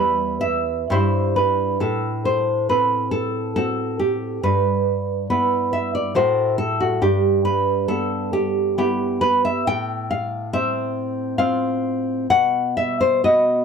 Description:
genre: romantic piece for solo classical guitar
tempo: 68 BPM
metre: 3/4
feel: rubato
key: E minor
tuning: A4 = 440 Hz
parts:
  - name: nylon-string guitar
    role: solo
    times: 0.0-13.6 s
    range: E2 to G5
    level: -18 LUFS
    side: equal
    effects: none
room: light reverb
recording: dry, close 1970s-style studio recording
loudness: -18 LUFS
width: side -6 dB against mid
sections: 0.0-13.6 A section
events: none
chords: 0.0 Em; 0.9 Em/G; 1.8 F#dim/A; 4.4 Em/G; 6.2 F#dim/A; 7.0 Em/G; 9.7 F/A; 12.3 B

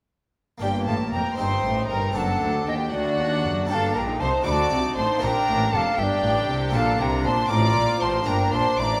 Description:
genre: classical, baroque-style concerto movement with solo episodes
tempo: 79 BPM (dotted quarters)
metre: 6/8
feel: straight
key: G minor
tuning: A4 = 440 Hz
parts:
  - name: bright wooden flute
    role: melody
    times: 0.6-9.0 s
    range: D5 to C6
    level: -28 LUFS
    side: equal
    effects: none
  - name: rich chamber violin section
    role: melody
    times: 0.6-9.0 s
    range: F#5 to D6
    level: -32 LUFS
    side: equal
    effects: none
  - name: warm chamber violin section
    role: second line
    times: 0.6-9.0 s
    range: F#4 to D5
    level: -30 LUFS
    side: equal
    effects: none
  - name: harpsichord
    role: accompaniment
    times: 0.6-9.0 s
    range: D2 to A4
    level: -35 LUFS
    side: equal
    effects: none
  - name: warm chamber viola section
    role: accompaniment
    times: 0.6-9.0 s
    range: Bb3 to F#4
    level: -33 LUFS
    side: equal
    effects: none
  - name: rich chamber cello section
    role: bass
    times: 0.6-9.0 s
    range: D2 to D3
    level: -31 LUFS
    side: equal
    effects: none
  - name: warm chamber double bass section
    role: bass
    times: 0.6-9.0 s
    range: F1 to Eb2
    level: -31 LUFS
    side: equal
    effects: none
room: wet recital hall reverb, RT60 1.6 s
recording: none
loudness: -23 LUFS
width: mono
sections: 0.6-9.0 A section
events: none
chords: 0.6 Gm; 1.4 Cm/G; 2.2 D7/F#; 3.7 Gm; 4.5 D; 5.2 Gm; 6.8 Bb; 7.5 F/A; 8.3 Gm

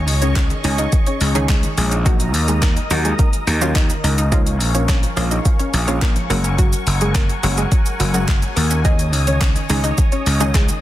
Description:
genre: dance-pop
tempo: 106 BPM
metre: 4/4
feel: straight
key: unclear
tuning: A4 = 439 Hz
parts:
  - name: punchy chord stab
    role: accompaniment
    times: 0.0-10.8 s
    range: Eb3 to Ab4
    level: -26 LUFS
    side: right 1 dB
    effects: chorus, sidechain pumping
  - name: warm analog pad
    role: sustained chords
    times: 0.0-10.8 s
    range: Ab4 to Eb6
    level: -27 LUFS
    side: equal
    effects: chorus, sidechain pumping
  - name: gritty slap bass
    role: bass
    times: 0.0-10.7 s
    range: Gb1 to Eb2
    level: -18 LUFS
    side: equal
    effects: overdrive, sidechain pumping
  - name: deep house drum kit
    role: drums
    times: 0.1-10.8 s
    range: handclaps, hi-hat, kick drum, shaker, snare drum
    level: -18 LUFS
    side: equal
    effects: overdrive
  - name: hollow square pluck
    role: melody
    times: 0.2-10.7 s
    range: Gb3 to Eb5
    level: -26 LUFS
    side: left 1 dB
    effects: chorus, sidechain pumping
  - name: wide unison pluck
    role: arpeggios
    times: 0.2-10.8 s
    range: Eb3 to Eb4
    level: -30 LUFS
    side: left 2 dB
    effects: none
  - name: group handclap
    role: percussion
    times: 0.4-10.7 s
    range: none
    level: barely audible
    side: none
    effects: none
room: little or no reverb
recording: dense, heavily limited modern master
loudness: -15 LUFS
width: side -14 dB against mid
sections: 0.0-10.8 A section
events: none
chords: 0.0 Dbsus2; 2.1 Ebm; 4.3 Bbm7; 6.3 Gbadd9; 8.8 Dbsus2

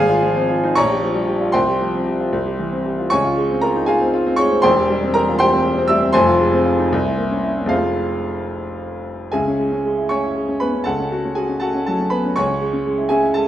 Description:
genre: classical, virtuoso piano study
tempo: 72-81 BPM (dotted quarters)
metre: 6/8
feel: rubato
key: F minor, C# minor from 9.3 s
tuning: A4 = 441 Hz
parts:
  - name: bright grand piano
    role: solo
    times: 0.0-13.5 s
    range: E1 to E6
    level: -16 LUFS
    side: equal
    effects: none
room: wet recital hall reverb, RT60 1.5 s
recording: nothing above 10.9 kHz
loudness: -16 LUFS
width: side -12 dB against mid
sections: 0.0-9.3 A section; 9.3-13.5 B section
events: none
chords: 0.0 Fm/Ab; 0.8 Gm7b5/Bb; 1.5 Csus4; 2.3 C; 3.1 Dbmaj7; 4.7 C/E; 6.1 Fm; 6.9 C7b9; 7.7 Fm; 9.3 C#m; 10.9 F#m/C#; 12.4 C#m

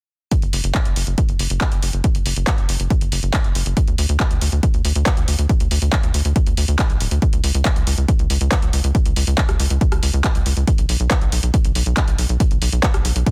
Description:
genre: uplifting trance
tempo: 139 BPM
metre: 4/4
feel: straight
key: unclear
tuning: A4 = 440 Hz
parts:
  - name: electronic kick drum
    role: drums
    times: 0.3-13.3 s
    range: none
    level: -21 LUFS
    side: equal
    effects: none
  - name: punchy analog drum machine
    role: drums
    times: 0.3-13.3 s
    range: handclaps, hi-hat, rim click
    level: -26 LUFS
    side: equal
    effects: none
  - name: tight sequencer bass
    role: bass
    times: 0.4-13.2 s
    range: D1 to D2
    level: -21 LUFS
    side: equal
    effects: sidechain pumping
room: digital ambience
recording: dense, heavily limited modern master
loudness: -18 LUFS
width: mono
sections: 0.3-13.3 A section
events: none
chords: none

